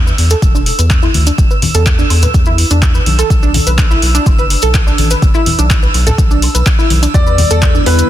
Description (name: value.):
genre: progressive house.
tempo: 125 BPM.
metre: 4/4.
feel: straight.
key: E minor.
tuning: A4 = 440 Hz.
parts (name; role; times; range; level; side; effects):
round analog bass; bass; 0.0-8.0 s; E1 to E2; -13 LUFS; equal; sidechain pumping.
drifting glass-harmonics texture; texture; 0.1-8.1 s; E6; -22 LUFS; right 4 dB; chorus, built-in reverb, sidechain pumping.
analog pluck; arpeggios; 0.1-8.0 s; D4 to B4; -18 LUFS; right 1 dB; chorus, sidechain pumping, ping-pong delay.
maracas; percussion; 0.1-8.1 s; none; -26 LUFS; left 3 dB; none.
deep house drum kit; drums; 0.2-8.1 s; handclaps, hi-hat; -18 LUFS; equal; none.
electronic kick drum; drums; 0.4-7.7 s; none; -12 LUFS; equal; overdrive.
woodblock and congas; percussion; 0.6-7.7 s; none; -20 LUFS; left 2 dB; sidechain pumping on perc.
warm baby grand piano; melody; 7.1-8.1 s; B4 to D5; -15 LUFS; left 3 dB; sidechain pumping, tape echo.
evolving wavetable pad; sustained chords; 7.5-8.1 s; D3 to E4; -19 LUFS; left 3 dB; phaser, built-in reverb, sidechain pumping.
room: digital ambience.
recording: dense, heavily limited modern master.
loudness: -8 LUFS.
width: side -12 dB against mid.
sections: 0.0-8.1 A section.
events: filter sweep on synth pluck 0.0-8.1.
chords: 0.0 E5; 3.3 Bsus4; 7.1 Em7.